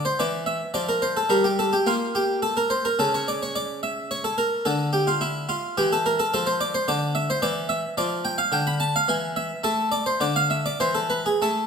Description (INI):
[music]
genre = classical, baroque-style suite movement for harpsichord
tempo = 107 BPM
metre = 3/4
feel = rubato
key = D minor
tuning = A4 = 440 Hz
[part]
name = harpsichord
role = solo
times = 0.0-11.7 s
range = C#3 to B5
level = -21 LUFS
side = equal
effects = none
[sound]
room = wet recital hall reverb, RT60 1.4 s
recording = none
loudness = -21 LUFS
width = side -6 dB against mid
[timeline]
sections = 0.0-11.7 A section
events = none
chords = 0.0 Dm; 1.3 Gm; 3.0 N.C.; 4.7 Dmadd9; 6.3 Dm/F; 7.4 N.C.; 8.0 Dm/F; 9.1 N.C.